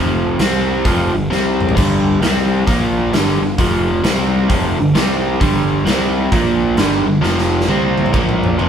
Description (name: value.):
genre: blues rock power trio and southern rock.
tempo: 132 BPM.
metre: 4/4.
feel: swing 64% on 8ths.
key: unclear.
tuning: A4 = 440 Hz.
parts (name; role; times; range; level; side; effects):
overdriven electric guitar; riff; 0.0-8.7 s; F2 to C4; -16 LUFS; equal; none.
fuzz fingered electric bass; bass; 0.0-8.7 s; F1 to C2; -21 LUFS; equal; overdrive.
big rock drum kit; drums; 0.4-8.7 s; hi-hat, kick drum, snare drum, splash cymbal, toms; -19 LUFS; equal; none.
room: light reverb.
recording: band playing live in one room.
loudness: -13 LUFS.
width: side -8 dB against mid.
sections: 0.0-8.7 A section.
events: drum fill 1.3-1.8, 7.2-8.7.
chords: 0.4 C5; 0.9 G5; 1.3 C5; 1.8 G5; 2.2 C5; 2.7 Bb5; 3.1 G5; 3.6 F5; 4.0 C5; 4.5 G5; 5.0 C5; 5.4 G5; 5.9 C5; 6.3 Bb5; 6.8 G5; 7.2 F5; 7.7 C5; 8.1 Bb5.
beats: 0.40 0.85 1.31 | 1.76 2.22 2.67 3.13 | 3.59 4.04 4.50 4.95 | 5.41 5.86 6.32 6.77 | 7.23 7.68 8.14 8.60.